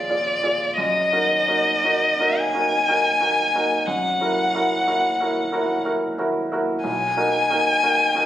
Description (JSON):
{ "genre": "classical, romantic duo for violin and grand piano", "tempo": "60 BPM", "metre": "3/4", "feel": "rubato", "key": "Eb minor", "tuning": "A4 = 438 Hz", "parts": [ { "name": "warm violin", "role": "melody", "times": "0.0-8.3 s", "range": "D5 to Ab5", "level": "-19 LUFS", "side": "left 1 dB", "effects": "none" }, { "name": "bright baby grand piano", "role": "accompaniment", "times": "0.0-8.3 s", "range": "B1 to D5", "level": "-23 LUFS", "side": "right 1 dB", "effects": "none" } ], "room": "moderate recital hall reverb, RT60 1.5 s", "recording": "recorded on a phone in the room, studio reverb", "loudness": "-18 LUFS", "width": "side -12 dB against mid", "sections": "0.0-8.3 A section", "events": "none", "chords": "0.0 Ddim/F; 0.8 Ebm/Gb; 3.9 Gb7; 6.8 Bmaj7", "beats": "| 0.79 1.84 2.88 | 3.88 4.87 5.85 | 6.85 7.83" }